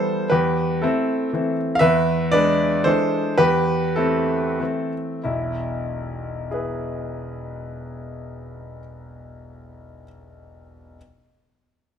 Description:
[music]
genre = classical, romantic triple-time dance for piano with dotted rhythms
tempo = 85-125 BPM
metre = 3/4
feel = rubato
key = unclear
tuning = A4 = 439 Hz
[part]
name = clear grand piano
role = solo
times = 0.0-11.0 s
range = E1 to F5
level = -20 LUFS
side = equal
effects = none
[sound]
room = light reverb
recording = close, detailed microphones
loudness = -19 LUFS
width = side -8 dB against mid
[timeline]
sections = 0.0-5.2 A section; 5.2-8.9 B section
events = slowing down 1.1-5.2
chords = 0.3 Am/E; 1.8 E7; 3.4 Am/E; 5.2 E

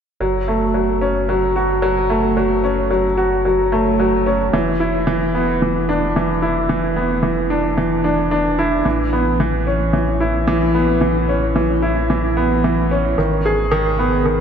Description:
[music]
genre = piano and strings electronica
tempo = 111 BPM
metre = 4/4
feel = straight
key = F# minor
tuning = A4 = 444 Hz
[part]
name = bright upright piano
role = riff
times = 0.2-14.4 s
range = D#3 to G#4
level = -16 LUFS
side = equal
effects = analog delay
[part]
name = warm sub bass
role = bass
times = 0.2-14.4 s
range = E1 to A1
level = -23 LUFS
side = equal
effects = none
[sound]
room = wet lush hall reverb, RT60 2.7 s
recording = dreamy mix soaked in reverb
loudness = -15 LUFS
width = side -7 dB against mid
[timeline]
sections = 0.2-14.4 A section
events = none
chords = 0.2 F#m; 4.5 E5; 8.9 Aadd9; 13.2 G#m

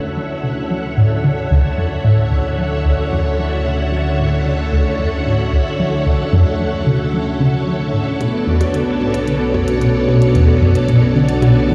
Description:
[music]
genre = ambient, sequencer-driven space music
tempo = 112 BPM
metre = 4/4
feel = straight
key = D major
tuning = A4 = 440 Hz
[part]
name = string machine, full ensemble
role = sustained chords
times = 0.0-11.7 s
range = D3 to F#5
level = -21 LUFS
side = equal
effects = ensemble chorus
[part]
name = vibraphone with medium mallets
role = arpeggios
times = 0.0-11.7 s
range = B3 to A4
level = -29 LUFS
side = equal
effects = delay
[part]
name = resonant blip pluck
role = riff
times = 0.0-11.7 s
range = D2 to F#3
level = -19 LUFS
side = equal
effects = phaser, delay
[part]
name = fat analog bass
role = bass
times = 0.0-11.7 s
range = B1 to D2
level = -25 LUFS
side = equal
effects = none
[part]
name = electronic hi-hat and percussion blips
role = percussion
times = 8.2-11.5 s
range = none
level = -32 LUFS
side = equal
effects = delay
[sound]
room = moderate huge ambient reverb, RT60 7.4 s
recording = played on a big sound system in a bare room, stone room reverb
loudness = -16 LUFS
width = mono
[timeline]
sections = 0.0-11.7 A section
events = fade-in on vibraphone 0.0-11.7; filter sweep on synth arpeggio sound 0.0-11.7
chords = 0.0 Dmaj7; 8.2 Bm7

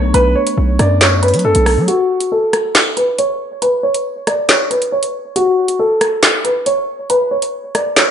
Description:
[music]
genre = hip hop, drill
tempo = 138 BPM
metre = 4/4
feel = half-time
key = unclear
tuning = A4 = 440 Hz
[part]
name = dark baby grand piano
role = melody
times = 0.0-8.1 s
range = F#4 to D5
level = -15 LUFS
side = equal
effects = low-pass filter, tape echo
[part]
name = bell-like tine electric piano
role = accompaniment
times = 0.0-1.9 s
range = A3 to D4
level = -22 LUFS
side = right 1 dB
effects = analog chorus, low-pass filter
[part]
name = hard-hitting 808-style bass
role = bass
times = 0.0-1.9 s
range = B1 to F#3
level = -14 LUFS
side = equal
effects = none
[part]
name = drill drum kit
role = drums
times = 0.1-8.1 s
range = handclaps, hi-hat, rim click, snare drum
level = -14 LUFS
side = equal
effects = none
[sound]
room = moderate plate reverb, RT60 1.0 s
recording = dreamy mix soaked in reverb, nothing above 10.8 kHz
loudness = -12 LUFS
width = side -8 dB against mid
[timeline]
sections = 0.0-1.9 A section; 1.9-8.1 B section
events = break 1.9-8.1; filter sweep 1.9-8.1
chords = 0.0 Bm7; 1.9 N.C.

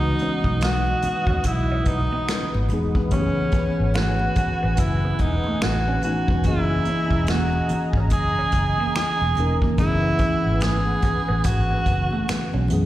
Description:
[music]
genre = R&B, neo-soul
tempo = 72 BPM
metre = 4/4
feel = swing 58% on 16ths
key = unclear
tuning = A4 = 440 Hz
[part]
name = breathy tenor saxophone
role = melody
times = 0.0-12.7 s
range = C#4 to G#4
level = -25 LUFS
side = right 1 dB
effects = slapback echo
[part]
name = mellow tine electric piano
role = accompaniment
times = 0.0-12.9 s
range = E3 to D#5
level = -26 LUFS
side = left 1 dB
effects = none
[part]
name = warm analog pad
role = sustained chords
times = 0.0-12.9 s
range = B4 to D#6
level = -34 LUFS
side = left 1 dB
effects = chorus
[part]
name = vintage muted fingered electric bass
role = bass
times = 0.0-12.9 s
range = E1 to F#2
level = -23 LUFS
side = equal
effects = none
[part]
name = congas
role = percussion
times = 0.0-12.9 s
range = none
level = -35 LUFS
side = left 2 dB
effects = none
[part]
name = electric guitar through a small old amp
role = second line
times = 0.2-12.7 s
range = A3 to C#4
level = -34 LUFS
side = right 6 dB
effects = phaser, slapback echo
[part]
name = unplugged drum kit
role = drums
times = 0.2-12.9 s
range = finger snaps, hi-hat, kick drum, snare drum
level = -25 LUFS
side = equal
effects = none
[sound]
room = light reverb, studio ambience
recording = live gig heard through the venue's PA, recital hall reverb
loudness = -19 LUFS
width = side -14 dB against mid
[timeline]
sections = 0.0-12.9 A section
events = none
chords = 0.0 C#m11 (rootless); 3.1 F#m11; 6.4 F#13; 9.8 F#m11

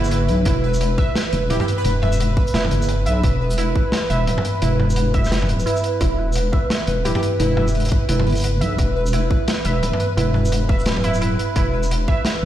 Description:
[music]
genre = half-time drum and bass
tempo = 173 BPM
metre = 4/4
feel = swing 59% on 16ths, half-time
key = unclear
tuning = A4 = 440 Hz
[part]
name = dark analog pad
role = sustained chords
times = 0.0-12.4 s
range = B4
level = -27 LUFS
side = equal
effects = chorus, sidechain pumping
[part]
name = warbly dusty pluck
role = arpeggios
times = 0.0-12.4 s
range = E4 to E5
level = -26 LUFS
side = right 4 dB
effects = chorus, tape echo
[part]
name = deep soft wobble bass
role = bass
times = 0.0-12.4 s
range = D1 to B1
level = -20 LUFS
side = equal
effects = chorus
[part]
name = crunchy breakbeat drum kit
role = drums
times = 0.0-12.3 s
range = hi-hat, shaker, snare drum, toms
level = -23 LUFS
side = equal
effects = none
[part]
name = pulsing gated texture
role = texture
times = 0.0-12.4 s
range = B4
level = -30 LUFS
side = equal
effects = chorus, built-in reverb
[part]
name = electronic kick drum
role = drums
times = 0.5-12.2 s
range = none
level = -18 LUFS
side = equal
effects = none
[part]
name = plucky unison lead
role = melody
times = 1.5-1.9, 7.0-7.7 s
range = E4 to B4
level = -29 LUFS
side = right 1 dB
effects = tape echo
[sound]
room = light reverb, small room ambience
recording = played on a big sound system in a bare room, stone room reverb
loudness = -17 LUFS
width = side -12 dB against mid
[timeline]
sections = 0.0-12.4 A section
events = none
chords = 0.0 E5

